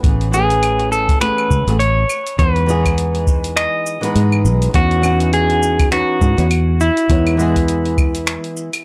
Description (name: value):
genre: sunset chillout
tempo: 102 BPM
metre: 4/4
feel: swing 58% on 16ths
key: E major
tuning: A4 = 438 Hz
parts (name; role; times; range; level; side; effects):
- flamenco guitar; accompaniment; 0.0-8.7 s; E3 to D#5; -24 LUFS; equal; tape echo
- fingered electric bass; bass; 0.0-8.4 s; A1 to G#2; -19 LUFS; equal; none
- deep house drum kit; drums; 0.0-8.8 s; claves, finger snaps, hi-hat, shaker; -27 LUFS; equal; overdrive
- electronic kick drum; drums; 0.0-8.1 s; none; -19 LUFS; equal; none
- clean electric guitar; melody; 0.3-8.8 s; E4 to D#5; -20 LUFS; equal; tape echo
room: digital ambience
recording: dry, gritty hardware recording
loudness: -16 LUFS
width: mono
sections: 0.0-8.8 A section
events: none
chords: 0.0 Amaj9; 2.1 Emaj7; 4.7 C#m11/E; 7.1 Emaj7